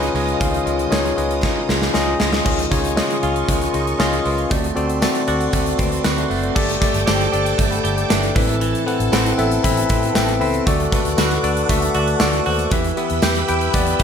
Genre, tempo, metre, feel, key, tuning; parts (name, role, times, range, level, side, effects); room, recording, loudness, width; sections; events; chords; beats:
1980s-style pop; 117 BPM; 4/4; straight; G major from 6.6 s; A4 = 439 Hz
tine electric piano; accompaniment; 0.0-14.0 s; G2 to B5; -20 LUFS; left 4 dB
phased string machine; sustained chords; 0.0-14.0 s; E#4 to E6; -27 LUFS; right 2 dB; ensemble chorus, phaser
clean electric guitar; riff; 0.0-14.0 s; D#3 to G4; -25 LUFS; right 9 dB; wide subtle chorus
vintage muted fingered electric bass; bass; 0.0-14.0 s; F#1 to E2; -24 LUFS; right 1 dB
gated 80s drum kit; drums; 0.0-14.0 s; crash cymbal, hi-hat, kick drum, snare drum, tambourine; -21 LUFS; equal
tambourine; percussion; 0.9-13.3 s; -36 LUFS; right 13 dB
light reverb, small room ambience; -16 LUFS; side -7 dB against mid
0.0-2.5 A section; 2.5-6.6 B section; 6.6-14.0 C section
drum fill 1.4-2.5
0.0 C#add9; 4.5 D7; 6.6 Gsus2; 8.4 Amadd9; 10.7 D; 12.7 Em
| 0.41 0.92 1.43 1.95 | 2.46 2.97 3.48 4.00 | 4.51 5.02 5.54 6.05 | 6.56 7.08 7.59 8.10 | 8.61 9.13 9.64 10.15 | 10.66 11.18 11.69 12.20 | 12.72 13.23 13.74